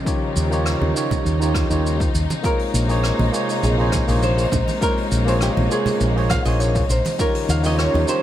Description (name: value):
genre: sunset chillout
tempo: 101 BPM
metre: 4/4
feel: straight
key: Bb dorian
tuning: A4 = 440 Hz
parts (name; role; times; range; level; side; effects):
- barky tine electric piano; accompaniment; 0.0-8.2 s; Eb3 to Db5; -24 LUFS; moving between left 5 dB and right 5 dB; overdrive, auto-pan, vintage 12-bit sampler grit, ping-pong delay
- warm studio string section; sustained chords; 0.0-8.2 s; C3 to Eb4; -26 LUFS; left 2 dB; none
- electronic kick drum; drums; 0.1-7.3 s; none; -24 LUFS; equal; overdrive
- vintage brush drum kit; drums; 0.1-8.2 s; hi-hat, rim click, shaker; -30 LUFS; equal; none
- woody fretless electric bass; bass; 0.4-8.0 s; Bb1 to Eb2; -20 LUFS; equal; lush chorus
- congas; percussion; 0.8-8.1 s; none; -29 LUFS; right 3 dB; none
- nylon-string guitar; melody; 2.5-8.2 s; G4 to F5; -24 LUFS; right 1 dB; none
room: light reverb, small room ambience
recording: none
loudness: -17 LUFS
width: side -12 dB against mid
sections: 0.0-8.2 A section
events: none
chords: 0.0 Eb9; 2.4 Bbm9; 7.2 Eb9